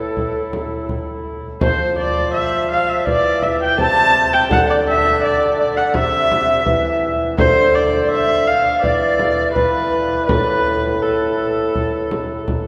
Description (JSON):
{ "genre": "classical, renaissance-style consort dance", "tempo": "83 BPM", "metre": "4/4", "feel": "straight", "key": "A minor", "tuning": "A4 = 440 Hz", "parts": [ { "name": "tenor recorder", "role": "melody", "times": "0.0-12.4 s", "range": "A4 to A5", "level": "-24 LUFS", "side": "equal", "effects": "none" }, { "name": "warm viola", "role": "second line", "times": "0.0-12.5 s", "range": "E4 to A5", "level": "-20 LUFS", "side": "equal", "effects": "none" }, { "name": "warm bassoon", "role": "bass", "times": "0.0-12.7 s", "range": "A2 to F3", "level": "-23 LUFS", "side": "equal", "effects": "none" }, { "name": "frame drum", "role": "percussion", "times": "0.2-12.7 s", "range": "none", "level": "-26 LUFS", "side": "equal", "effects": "none" } ], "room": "wet cathedral reverb, RT60 5.2 s", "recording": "heard from further back in the room", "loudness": "-17 LUFS", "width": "mono", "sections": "0.0-1.6 A section; 1.6-12.7 A section", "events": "none", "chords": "0.0 A5; 1.6 Dm9/F; 3.1 C/E; 4.5 Dadd9; 6.0 C; 7.4 Dm9; 8.8 E5; 10.3 Asus2" }